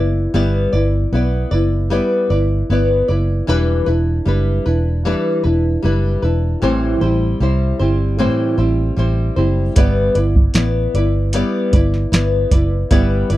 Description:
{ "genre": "indie pop, bedroom pop", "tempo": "76 BPM", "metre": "4/4", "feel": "straight", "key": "G major", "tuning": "A4 = 442 Hz", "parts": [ { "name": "flamenco guitar", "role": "accompaniment", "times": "0.0-13.4 s", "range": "A2 to D5", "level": "-18 LUFS", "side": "left 1 dB", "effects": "lush chorus, warbly pitch drift" }, { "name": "vintage muted fingered electric bass", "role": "bass", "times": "0.0-13.4 s", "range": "E1 to C2", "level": "-17 LUFS", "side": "right 1 dB", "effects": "none" }, { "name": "soft vintage rhythm box", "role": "drums", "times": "9.8-13.4 s", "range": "hi-hat, kick drum, snare drum", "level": "-15 LUFS", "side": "right 1 dB", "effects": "none" } ], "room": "little or no reverb", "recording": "dry, close 1970s-style studio recording", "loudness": "-14 LUFS", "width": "side -15 dB against mid", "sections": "0.0-13.4 A section", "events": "none", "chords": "0.0 G6; 3.5 Em7; 6.6 Am7; 9.8 G6" }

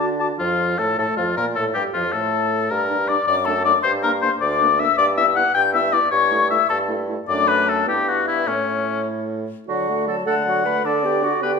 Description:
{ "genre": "quick classical-period movement for wind quintet", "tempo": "104 BPM (dotted quarters)", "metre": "6/8", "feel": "rubato", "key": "D major from 5.0 s", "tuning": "A4 = 440 Hz", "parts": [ { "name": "silver concert flute", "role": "melody", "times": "0.0-11.6 s", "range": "C#5 to G6", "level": "-25 LUFS", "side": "left 10 dB", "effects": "none" }, { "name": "clear oboe", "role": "second line", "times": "0.0-11.5 s", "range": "C#4 to A5", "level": "-20 LUFS", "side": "left 4 dB", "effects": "none" }, { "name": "warm French horn", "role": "accompaniment", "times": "0.0-11.6 s", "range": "F3 to F#4", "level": "-30 LUFS", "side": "left 1 dB", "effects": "none" }, { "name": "warm clarinet", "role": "accompaniment", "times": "0.0-11.6 s", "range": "D4 to B4", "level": "-28 LUFS", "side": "right 7 dB", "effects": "none" }, { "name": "warm bassoon", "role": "bass", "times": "0.0-11.6 s", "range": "D2 to D3", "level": "-26 LUFS", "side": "right 2 dB", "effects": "none" } ], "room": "wet recital hall reverb, RT60 1.3 s", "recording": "minimal, uncompressed stereo recording", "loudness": "-17 LUFS", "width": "side -5 dB against mid", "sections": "0.4-9.7 A section; 9.7-11.6 B section", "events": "none", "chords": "0.4 F; 1.0 Fadd11; 1.6 Fadd9; 2.7 Gm; 3.3 D/F#; 3.8 Gm; 5.0 Em/G; 6.1 A7/G; 7.3 D/F#; 7.9 Em/G; 8.5 A; 9.7 D; 10.9 G/D" }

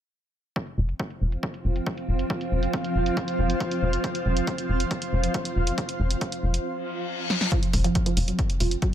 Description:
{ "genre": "driving peak-time techno", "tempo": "138 BPM", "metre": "4/4", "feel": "straight", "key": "unclear", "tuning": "A4 = 440 Hz", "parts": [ { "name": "swarming drone", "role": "drone", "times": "1.4-8.9 s", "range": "F3 to C4", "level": "-33 LUFS", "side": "right 1 dB", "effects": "built-in reverb, sidechain pumping" }, { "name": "electronic kick drum", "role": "drums", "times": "0.6-8.9 s", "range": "none", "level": "-28 LUFS", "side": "equal", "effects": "high-pass filter on kick, high-pass filter on room" }, { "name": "punchy analog drum machine", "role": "drums", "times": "0.6-8.9 s", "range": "hi-hat, snare drum", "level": "-31 LUFS", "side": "right 1 dB", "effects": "sidechain pumping on hats, low-pass filter on hats, low-pass filter on snare, low-pass filter on room" }, { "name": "granular cloud pad", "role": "texture", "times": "1.3-6.6 s", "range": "F4 to F5", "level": "-30 LUFS", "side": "right 1 dB", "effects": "built-in reverb, sidechain pumping" }, { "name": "tight sequencer bass", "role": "bass", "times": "0.8-8.8 s", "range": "F1", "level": "-24 LUFS", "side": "equal", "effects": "sidechain pumping" }, { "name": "reverse cymbal", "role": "sound effects", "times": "6.8-7.5 s", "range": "none", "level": "-31 LUFS", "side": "left 7 dB", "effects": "none" }, { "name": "resonant blip pluck", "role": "riff", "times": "7.5-8.9 s", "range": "F3 to F4", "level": "-28 LUFS", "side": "right 4 dB", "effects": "phaser, tube saturation, lush chorus, cassette tape, sidechain pumping, ping-pong delay" } ], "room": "little or no reverb", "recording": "none", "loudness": "-24 LUFS", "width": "side -10 dB against mid", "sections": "0.6-7.5 A section; 7.5-8.9 B section", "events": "filter sweep on drum 0.6-7.5; reverse cymbal 6.8-7.5; drum fill 7.3", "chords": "0.6 F5" }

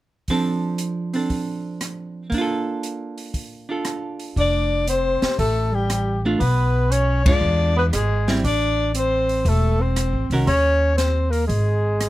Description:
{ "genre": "jazz, small-group swing and bop", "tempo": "118 BPM", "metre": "4/4", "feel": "swing 68% on 8ths", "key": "F major", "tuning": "A4 = 439 Hz", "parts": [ { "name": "archtop guitar, miked and amplified", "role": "accompaniment", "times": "0.3-10.5 s", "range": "Eb3 to Bb4", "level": "-24 LUFS", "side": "right 2 dB", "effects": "none" }, { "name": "open jazz drum kit", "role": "drums", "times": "0.3-12.1 s", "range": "hi-hat, kick drum, ride cymbal, rim click, snare drum", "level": "-25 LUFS", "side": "equal", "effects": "none" }, { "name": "breathy soprano saxophone", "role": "melody", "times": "4.4-12.1 s", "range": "G4 to D5", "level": "-23 LUFS", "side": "left 3 dB", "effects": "none" }, { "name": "breathy tenor saxophone", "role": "second line", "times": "4.4-12.1 s", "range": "G3 to D4", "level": "-25 LUFS", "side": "right 3 dB", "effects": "none" }, { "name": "upright bass", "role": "bass", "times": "4.4-12.1 s", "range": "E1 to F2", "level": "-21 LUFS", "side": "equal", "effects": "none" } ], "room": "little or no reverb", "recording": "close, detailed microphones", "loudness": "-18 LUFS", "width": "side -16 dB against mid", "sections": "0.3-4.4 A section; 4.4-12.1 B section", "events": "band accent 7.2", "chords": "0.3 F6; 2.3 Bbmaj7; 4.4 F69; 6.4 Bdim; 7.4 E7b9; 8.4 Am; 10.5 Bbmadd11/Eb; 11.5 N.C." }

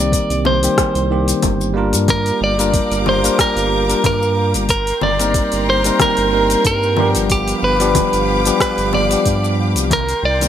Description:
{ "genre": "sunset chillout", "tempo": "92 BPM", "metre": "4/4", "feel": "swing 54% on 16ths", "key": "G minor", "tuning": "A4 = 443 Hz", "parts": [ { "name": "clean electric guitar", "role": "melody", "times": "0.0-10.5 s", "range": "G4 to D5", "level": "-18 LUFS", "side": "equal", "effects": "tremolo, digital delay" }, { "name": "bell-like tine electric piano", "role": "accompaniment", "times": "0.0-10.5 s", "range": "Eb3 to Bb4", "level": "-20 LUFS", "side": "left 1 dB", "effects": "auto-pan" }, { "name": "round analog bass", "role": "bass", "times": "0.0-10.5 s", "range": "G1 to G2", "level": "-21 LUFS", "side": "equal", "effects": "none" }, { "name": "electronic kick drum", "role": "drums", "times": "0.1-10.0 s", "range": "none", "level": "-20 LUFS", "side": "equal", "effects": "none" }, { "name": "smooth R&B drum kit", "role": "drums", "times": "0.1-10.5 s", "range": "congas, hi-hat, rim click, shaker", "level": "-21 LUFS", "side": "left 2 dB", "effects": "none" }, { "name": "clear studio string section", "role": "sustained chords", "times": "2.1-10.5 s", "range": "G4 to D6", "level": "-24 LUFS", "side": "left 1 dB", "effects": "none" } ], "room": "light reverb, digital ambience", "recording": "none", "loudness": "-13 LUFS", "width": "side -10 dB against mid", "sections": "0.0-10.5 A section", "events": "none", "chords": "0.0 Cm7; 2.1 Gm7; 4.7 Eb6/G; 7.3 G7; 9.9 Cm7" }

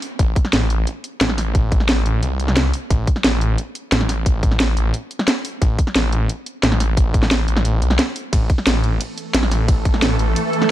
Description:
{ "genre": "dark technical drum and bass", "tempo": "177 BPM", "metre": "4/4", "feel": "straight", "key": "A minor", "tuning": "A4 = 440 Hz", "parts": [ { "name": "drum and bass drum kit", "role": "drums", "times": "0.0-10.7 s", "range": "hi-hat, ride cymbal, snare drum", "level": "-20 LUFS", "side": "equal", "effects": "none" }, { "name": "snarling distorted saw bass", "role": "bass", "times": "0.2-10.3 s", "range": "A1 to C2", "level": "-18 LUFS", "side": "equal", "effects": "distortion, tube saturation, sidechain pumping" }, { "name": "electronic kick drum", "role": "drums", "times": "0.2-9.9 s", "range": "none", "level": "-16 LUFS", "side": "equal", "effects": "none" }, { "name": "swarming drone", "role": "sustained chords", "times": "9.3-10.7 s", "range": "E3 to A4", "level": "-22 LUFS", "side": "right 2 dB", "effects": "built-in reverb, sidechain pumping" } ], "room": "little or no reverb", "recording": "dark, warm production", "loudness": "-16 LUFS", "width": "side -13 dB against mid", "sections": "0.0-10.7 A section", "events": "break 8.0-8.3", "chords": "0.0 A5" }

